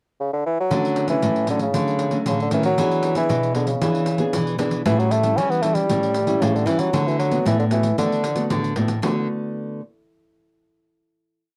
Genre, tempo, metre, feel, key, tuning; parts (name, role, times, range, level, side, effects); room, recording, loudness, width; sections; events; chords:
samba and choro; 115 BPM; 4/4; straight; D major; A4 = 441 Hz
warm bassoon; melody; 0.2-8.5 s; C#3 to C#4; -24 LUFS; equal
nylon-string guitar; accompaniment; 0.7-9.8 s; A2 to G#4; -27 LUFS; equal
nylon-string guitar; bass; 0.7-9.3 s; A2 to E3; -26 LUFS; equal
pandeiro; percussion; 0.7-9.2 s; -31 LUFS; equal
light reverb; dry, close 1970s-style studio recording; -21 LUFS; mono
0.0-0.7 pickup bar; 0.7-9.0 A section; 9.0-11.1 final chord
0.0 N.C.; 0.7 Dmaj7; 2.8 E7; 4.9 A7; 6.9 D6